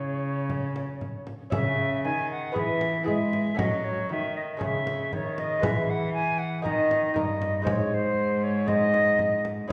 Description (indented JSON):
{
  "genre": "classical, renaissance-style consort dance",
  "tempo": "118 BPM",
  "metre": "4/4",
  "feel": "straight",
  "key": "C# minor",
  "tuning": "A4 = 440 Hz",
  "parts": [
    { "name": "silver concert flute", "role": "melody", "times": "0.0-9.4 s", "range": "B#4 to G#5", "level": "-30 LUFS", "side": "equal", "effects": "none" },
    { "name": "lute", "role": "accompaniment", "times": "0.0-9.7 s", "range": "G2 to E5", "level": "-34 LUFS", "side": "equal", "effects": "none" },
    { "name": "warm cello", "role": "bass", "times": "0.0-9.7 s", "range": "G2 to G#3", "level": "-32 LUFS", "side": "equal", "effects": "none" },
    { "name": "frame drum", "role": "percussion", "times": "0.5-9.7 s", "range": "none", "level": "-36 LUFS", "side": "equal", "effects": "none" }
  ],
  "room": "wet recital hall reverb, RT60 1.6 s",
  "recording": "recorded in a church or concert hall, nothing above 10.6 kHz",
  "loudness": "-26 LUFS",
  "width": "mono",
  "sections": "0.0-1.5 A section; 1.5-9.7 A section",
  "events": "none",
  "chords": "0.0 C#m; 2.6 E; 3.6 F#m; 4.6 C#m; 5.6 E; 6.7 D#; 7.7 G#",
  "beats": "0.50 1.02 | 1.53 2.05 2.56 3.08 | 3.59 4.10 4.61 5.12 | 5.63 6.14 6.65 7.16 | 7.67 8.18 8.69 9.20 | 9.71"
}